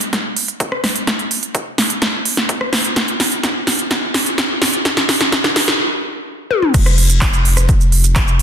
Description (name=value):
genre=EDM, festival progressive house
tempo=127 BPM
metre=4/4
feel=straight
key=unclear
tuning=A4 = 437 Hz
part: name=big-room dance drum kit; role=drums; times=0.0-8.4 s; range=cabasa, crash cymbal, handclaps, hi-hat, rim click, snare drum, toms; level=-15 LUFS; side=equal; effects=overdrive
part: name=electronic kick drum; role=drums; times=0.1-8.3 s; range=none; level=-18 LUFS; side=equal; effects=overdrive, high-pass filter on kick, high-pass filter on room
part: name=saturated sub bass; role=bass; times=6.7-8.4 s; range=F1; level=-15 LUFS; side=equal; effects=sidechain pumping
room=moderate lush hall reverb, RT60 1.8 s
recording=dense, heavily limited modern master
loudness=-13 LUFS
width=side -8 dB against mid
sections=0.0-6.7 A section; 6.7-8.4 B section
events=build-up 0.0-6.7; drum fill 0.0-5.8, 6.5; stop 5.8-6.7; drop 6.7-8.4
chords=none